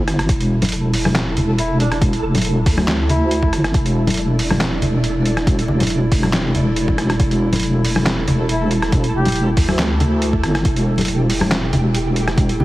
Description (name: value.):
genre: deep dubstep.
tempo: 139 BPM.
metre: 4/4.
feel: swing 53% on 16ths, half-time.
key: E minor.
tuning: A4 = 439 Hz.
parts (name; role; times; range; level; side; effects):
dark analog pad; sustained chords; 0.0-12.6 s; E4; -25 LUFS; right 1 dB; chorus.
deep soft wobble bass; bass; 0.0-12.6 s; E1 to D2; -18 LUFS; equal; chorus.
trip hop sampler-style drum kit; drums; 0.1-12.6 s; handclaps, hi-hat, rim click, snare drum; -23 LUFS; equal; studio ambience.
electronic kick drum; drums; 0.3-12.5 s; none; -18 LUFS; equal; overdrive, studio ambience.
flickering grainy texture; texture; 0.6-12.6 s; A3 to A4; -28 LUFS; right 1 dB; built-in reverb.
congas; percussion; 0.6-12.6 s; none; -22 LUFS; left 1 dB; none.
mellow duduk; melody; 1.6-3.5, 8.5-9.5 s; D4 to G4; -27 LUFS; equal; dub echo.
room: digital ambience.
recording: heavily compressed radio sound, multiband compression, vinyl crackle.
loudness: -15 LUFS.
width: side -17 dB against mid.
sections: 0.0-12.6 A section.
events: none.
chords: 0.0 Em.